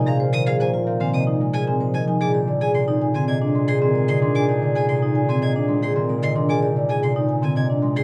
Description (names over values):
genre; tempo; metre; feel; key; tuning
classical, minimalist pattern music; 112 BPM; 4/4; straight; unclear; A4 = 438 Hz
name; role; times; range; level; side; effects
marimba with soft mallets; melody; 0.0-8.0 s; Ab4 to C6; -29 LUFS; equal; none
concert harp; accompaniment; 0.0-8.0 s; C3 to D4; -24 LUFS; equal; none
vibraphone with medium mallets; arpeggios; 0.0-8.0 s; C4 to D5; -27 LUFS; equal; none
warm bass clarinet; bass; 0.0-8.0 s; Bb2; -28 LUFS; equal; none
rich violin; arpeggios; 0.1-8.0 s; F5 to Ab6; -34 LUFS; equal; none
clear clarinet; second line; 2.2-6.3 s; Ab4; -31 LUFS; equal; none
room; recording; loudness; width
light reverb; dark, warm production; -21 LUFS; mono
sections
0.0-8.0 A section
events
none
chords
0.0 Bb7sus4; 2.2 Ab/Bb